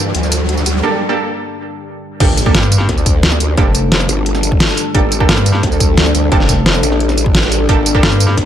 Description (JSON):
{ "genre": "dark technical drum and bass", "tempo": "175 BPM", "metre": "4/4", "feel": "straight", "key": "G minor", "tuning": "A4 = 443 Hz", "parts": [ { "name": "deep dark ambient pad", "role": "sustained chords", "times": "0.0-8.5 s", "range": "G3 to C5", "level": "-21 LUFS", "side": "left 2 dB", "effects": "chorus, built-in reverb, sidechain pumping" }, { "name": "growl bass", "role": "bass", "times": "0.0-8.5 s", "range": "G1 to G2", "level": "-16 LUFS", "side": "equal", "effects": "chorus, overdrive, sidechain pumping" }, { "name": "riser and impact", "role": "sound effects", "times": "0.0-3.6 s", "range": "none", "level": "-22 LUFS", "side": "equal", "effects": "none" }, { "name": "dubstep drum kit", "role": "drums", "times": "0.1-8.4 s", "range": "crash cymbal, hi-hat, snare drum, tambourine", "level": "-15 LUFS", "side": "equal", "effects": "high-pass filter on hats, high-pass filter on snare, high-pass filter on perc, high-pass filter on cymbals, high-pass filter on room" }, { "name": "orchestra-hit-like synth stab", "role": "stabs", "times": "0.8-8.0 s", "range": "Bb3 to A4", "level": "-20 LUFS", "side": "right 4 dB", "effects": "built-in reverb, cassette tape, dub echo" }, { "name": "electronic kick drum", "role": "drums", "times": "2.2-8.4 s", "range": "none", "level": "-14 LUFS", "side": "equal", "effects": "none" }, { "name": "metallic wobble bass", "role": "bass", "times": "2.5-8.4 s", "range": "F1 to G2", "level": "-14 LUFS", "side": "equal", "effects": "chorus, tube saturation" } ], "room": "light reverb", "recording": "none", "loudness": "-10 LUFS", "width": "side -10 dB against mid", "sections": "0.0-2.2 A section; 2.2-8.5 B section", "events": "build-up 0.0-2.2; riser 0.0-0.8; filter sweep on ambient pad 0.0-2.2; break 0.8-2.2; drop 2.2-8.5; impact 2.2-3.6", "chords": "0.0 Gmadd9" }